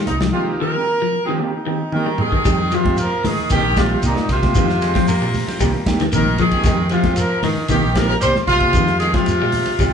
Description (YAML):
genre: afrobeat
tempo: 114 BPM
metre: 4/4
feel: straight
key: F minor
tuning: A4 = 444 Hz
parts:
  - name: semi-hollow electric guitar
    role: arpeggios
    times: 0.0-9.9 s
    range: Eb3 to Ab3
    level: -23 LUFS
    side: left 4 dB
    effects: tremolo
  - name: mellow horn section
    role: melody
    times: 0.1-9.9 s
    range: Eb4 to C5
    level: -20 LUFS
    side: equal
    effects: none
  - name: mellow electric guitar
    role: stabs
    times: 0.1-9.9 s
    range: Eb3 to G4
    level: -25 LUFS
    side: right 4 dB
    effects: none
  - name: fingered electric bass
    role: bass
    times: 0.1-9.9 s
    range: Bb1 to C3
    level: -23 LUFS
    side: right 1 dB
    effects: none
  - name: warm soul drum kit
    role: drums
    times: 0.1-9.9 s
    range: hi-hat, kick drum, ride cymbal, snare drum, toms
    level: -22 LUFS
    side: equal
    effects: none
  - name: congas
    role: percussion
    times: 0.1-9.8 s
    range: none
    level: -28 LUFS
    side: equal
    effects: none
  - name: shekere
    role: percussion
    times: 0.1-9.9 s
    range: none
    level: -28 LUFS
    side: left 1 dB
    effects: none
  - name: overdriven combo organ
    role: accompaniment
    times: 0.2-2.4 s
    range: F3 to G4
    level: -29 LUFS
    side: equal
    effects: none
  - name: edgy tenor saxophone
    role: second line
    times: 1.9-9.9 s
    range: Bb2 to G3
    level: -27 LUFS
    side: right 2 dB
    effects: none
  - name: raspy baritone saxophone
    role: second line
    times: 4.8-6.0 s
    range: Ab3 to C4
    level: -28 LUFS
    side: left 2 dB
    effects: none
room: wet large studio reverb, RT60 1.2 s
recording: band playing live in one room, nothing above 10.9 kHz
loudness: -15 LUFS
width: side -7 dB against mid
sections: 0.0-2.5 A section; 2.5-9.9 B section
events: drum fill 1.9-2.5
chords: 0.3 Fm9; 1.4 Cm7; 2.5 Fm9; 3.5 Cm7; 4.6 Fm9; 5.6 Cm7; 6.7 Fm9; 7.7 Cm7; 8.8 Fm9